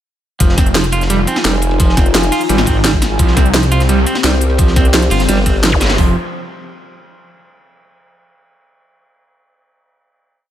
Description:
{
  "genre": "dark technical drum and bass",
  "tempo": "172 BPM",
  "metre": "4/4",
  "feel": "straight",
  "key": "F minor",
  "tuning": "A4 = 440 Hz",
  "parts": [
    { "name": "dark analog pad", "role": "sustained chords", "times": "1.0-6.1 s", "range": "C4 to Ab5", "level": "-21 LUFS", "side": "left 2 dB", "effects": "chorus, sidechain pumping" },
    { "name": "clean electric guitar", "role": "arpeggios", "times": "0.4-6.1 s", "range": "F3 to F4", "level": "-19 LUFS", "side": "right 4 dB", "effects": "vintage 12-bit sampler grit, sidechain pumping, dub echo" },
    { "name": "wide detuned saw bass", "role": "bass", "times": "0.4-6.1 s", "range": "F1 to C2", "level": "-15 LUFS", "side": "equal", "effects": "chorus, tube saturation" },
    { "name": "crunchy breakbeat drum kit", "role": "drums", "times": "0.4-6.0 s", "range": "hi-hat, ride cymbal, snare drum", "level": "-24 LUFS", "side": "equal", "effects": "high-pass filter on cymbals, studio reverb, high-pass filter on hats, high-pass filter on snare, high-pass filter on room" },
    { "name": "drum and bass drum kit", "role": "drums", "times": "0.4-6.0 s", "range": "hi-hat, snare drum", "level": "-17 LUFS", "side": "equal", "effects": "studio reverb" },
    { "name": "dubstep drum kit", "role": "drums", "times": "0.4-6.1 s", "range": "hi-hat, kick drum", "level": "-13 LUFS", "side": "equal", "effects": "overdrive, studio reverb" },
    { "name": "formant-sweep wobble bass", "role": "bass", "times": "1.4-6.0 s", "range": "F1 to C2", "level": "-15 LUFS", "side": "equal", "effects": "chorus" },
    { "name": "zap", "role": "sound effects", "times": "5.7-5.8 s", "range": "none", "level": "-22 LUFS", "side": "left 1 dB", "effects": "none" }
  ],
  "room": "light reverb",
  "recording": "none",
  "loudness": "-10 LUFS",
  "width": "side -11 dB against mid",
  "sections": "0.4-6.0 drop; 6.0-7.4 final chord",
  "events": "drop 0.4-6.0",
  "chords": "0.4 Fm7; 3.2 C5; 6.0 F5"
}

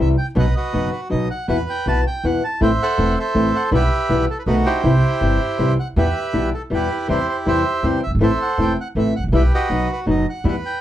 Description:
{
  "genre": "tango",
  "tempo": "161 BPM",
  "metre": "3/4",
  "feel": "rubato",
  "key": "E harmonic minor",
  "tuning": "A4 = 439 Hz",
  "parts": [
    { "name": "bandoneon", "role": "melody", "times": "0.0-10.8 s", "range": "D#4 to A5", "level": "-22 LUFS", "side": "right 2 dB", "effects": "none" },
    { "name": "flamenco guitar", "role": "accompaniment", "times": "0.0-10.5 s", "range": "B2 to F#4", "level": "-20 LUFS", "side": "left 2 dB", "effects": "none" },
    { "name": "upright bass", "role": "bass", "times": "0.0-10.6 s", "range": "E1 to E2", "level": "-20 LUFS", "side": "right 1 dB", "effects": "none" }
  ],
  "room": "light reverb",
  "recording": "dark, warm production",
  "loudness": "-16 LUFS",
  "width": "side -12 dB against mid",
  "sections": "0.0-10.8 A section",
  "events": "none",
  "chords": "0.4 B; 1.5 Esus2; 2.6 Am; 3.7 Em/B; 4.5 B7; 4.8 C; 6.0 Em; 7.1 C/E; 8.2 Am; 9.3 Em/B; 9.7 B"
}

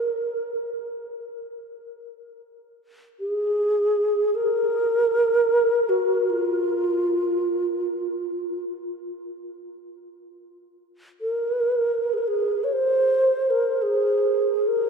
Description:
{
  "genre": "world meditative, free-time meditation music",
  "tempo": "free time",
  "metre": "none",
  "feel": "none",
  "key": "unclear",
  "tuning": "A4 = 440 Hz",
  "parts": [
    { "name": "mellow hollow xiao", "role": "solo", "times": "0.0-14.9 s", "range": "F4 to Db5", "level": "-21 LUFS", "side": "right 1 dB", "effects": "diffuse ambient delay" }
  ],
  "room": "wet cathedral reverb, RT60 5.9 s",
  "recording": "in a vast, echoing space",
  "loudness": "-20 LUFS",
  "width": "side -5 dB against mid",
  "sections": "0.0-14.9 A section",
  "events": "none",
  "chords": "none"
}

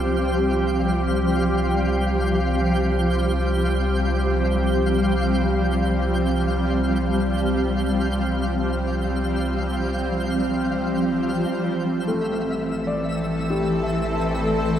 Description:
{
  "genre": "ambient",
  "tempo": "free time",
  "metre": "none",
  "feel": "none",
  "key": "C major",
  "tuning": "A4 = 440 Hz",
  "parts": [
    { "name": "shimmering ambient pad", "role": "sustained chords", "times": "0.0-14.8 s", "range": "E3 to C5", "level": "-22 LUFS", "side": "equal", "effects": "chorus, built-in reverb" },
    { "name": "warm sub bass", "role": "bass", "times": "0.0-14.8 s", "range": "A1 to C2", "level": "-26 LUFS", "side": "equal", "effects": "none" },
    { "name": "twinkling granular texture", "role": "texture", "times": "0.0-14.8 s", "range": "E5 to G6", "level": "-31 LUFS", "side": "left 1 dB", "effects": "built-in reverb" },
    { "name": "felt-muted upright piano", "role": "arpeggios", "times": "12.1-14.8 s", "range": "G3 to E5", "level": "-27 LUFS", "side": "left 2 dB", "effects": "tape echo" }
  ],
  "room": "wet echo chamber reverb, RT60 2.5 s",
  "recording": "echo-heavy mix",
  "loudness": "-20 LUFS",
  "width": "side -10 dB against mid",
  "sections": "0.0-14.8 A section",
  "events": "none",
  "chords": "0.0 Csus4; 11.5 Am"
}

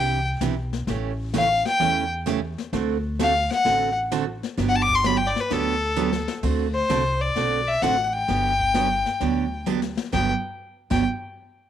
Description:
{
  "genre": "country, western swing",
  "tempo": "130 BPM",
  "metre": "4/4",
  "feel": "swing 68% on 8ths",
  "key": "G major",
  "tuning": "A4 = 440 Hz",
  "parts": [
    { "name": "clear fiddle", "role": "melody", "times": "0.0-11.0 s", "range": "A4 to D6", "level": "-22 LUFS", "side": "left 2 dB", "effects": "none" },
    { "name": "picked steel-string acoustic guitar", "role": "accompaniment", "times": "0.0-11.0 s", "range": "G2 to A4", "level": "-26 LUFS", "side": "right 10 dB", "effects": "none" },
    { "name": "upright bass", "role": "bass", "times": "0.0-11.0 s", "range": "G1 to E2", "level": "-28 LUFS", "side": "equal", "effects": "none" },
    { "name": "jazz brush drum kit", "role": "drums", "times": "0.4-11.0 s", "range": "brushed snare drum, crash cymbal, hi-hat, kick drum, snare drum, toms", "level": "-31 LUFS", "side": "left 7 dB", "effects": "none" }
  ],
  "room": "moderate spring reverb, RT60 1.3 s, studio ambience",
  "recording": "1960s-style stereo with parts hard left and right",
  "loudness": "-20 LUFS",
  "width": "side -10 dB against mid",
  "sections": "0.0-6.4 A section; 6.4-10.1 B section; 10.1-11.7 C section",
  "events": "fiddle solo 0.0-6.4; drum fill 6.0-6.4, 9.7-10.1",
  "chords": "0.0 Cadd9; 0.9 A7; 2.7 D7; 4.6 Gmaj7; 6.4 D7; 8.3 Gmaj7"
}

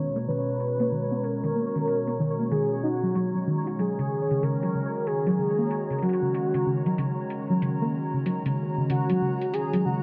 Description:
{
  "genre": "IDM",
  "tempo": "94 BPM",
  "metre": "4/4",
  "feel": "swing 62% on 16ths",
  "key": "Eb minor",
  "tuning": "A4 = 437 Hz",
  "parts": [
    { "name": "warm velvety synth lead", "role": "melody", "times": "0.0-10.0 s", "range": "F#4 to Db5", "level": "-31 LUFS", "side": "equal", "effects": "chorus, dub echo" },
    { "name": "hollow soft pad", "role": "sustained chords", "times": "0.0-10.0 s", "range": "B2 to Bb5", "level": "-32 LUFS", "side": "equal", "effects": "chorus" },
    { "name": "soft round pluck", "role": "arpeggios", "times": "0.0-10.0 s", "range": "Db3 to F#4", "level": "-30 LUFS", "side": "equal", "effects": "lush chorus, digital delay" },
    { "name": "pulsing gated texture", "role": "texture", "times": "0.0-10.0 s", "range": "Db5", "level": "-41 LUFS", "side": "equal", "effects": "chorus, built-in reverb" },
    { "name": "electronic hi-hat", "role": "drums", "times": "0.2-9.8 s", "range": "none", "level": "-50 LUFS", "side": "equal", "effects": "low-pass filter on hats" }
  ],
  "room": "moderate lush hall reverb, RT60 3.0 s",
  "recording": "low-pass filter",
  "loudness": "-26 LUFS",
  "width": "mono",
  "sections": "0.0-10.0 A section",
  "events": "filter sweep on synth arpeggio sound 0.0-10.0; filter sweep 0.0-10.0",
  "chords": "0.0 Bmaj7; 3.8 Ebm7"
}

